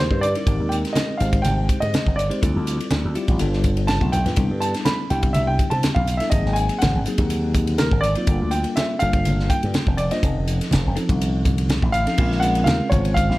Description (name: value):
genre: electric jazz fusion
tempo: 123 BPM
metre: 4/4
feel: straight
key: unclear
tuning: A4 = 440 Hz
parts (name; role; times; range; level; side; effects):
- warm baby grand piano; melody; 0.0-13.4 s; Bb4 to B5; -25 LUFS; equal; none
- bell-like tine electric piano; accompaniment; 0.0-13.4 s; F3 to C5; -26 LUFS; left 1 dB; medium stereo tremolo
- slap bass with an envelope filter; bass; 0.0-13.4 s; F1 to C3; -22 LUFS; equal; none
- crisp fusion drum kit; drums; 0.1-13.4 s; crash cymbal, hi-hat, kick drum, ride cymbal, snare drum; -23 LUFS; equal; none
- congas; percussion; 0.5-13.2 s; none; -27 LUFS; right 1 dB; none
room: light reverb, studio reverb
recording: dark, warm production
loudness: -18 LUFS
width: side -18 dB against mid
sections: 0.0-12.2 A section; 12.2-13.4 B section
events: drum fill 3.9-4.4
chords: 0.5 Abmaj7; 2.4 Dm11; 3.4 G9; 4.4 Cmaj13; 6.3 Ab9; 8.3 Gm9; 10.2 F7b13; 12.2 Bbm9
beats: | 0.47 0.96 1.45 1.94 | 2.42 2.91 3.40 3.89 | 4.38 4.86 5.35 5.84 | 6.33 6.82 7.30 7.79 | 8.28 8.77 9.26 9.74 | 10.23 10.72 11.21 11.70 | 12.18 12.67 13.16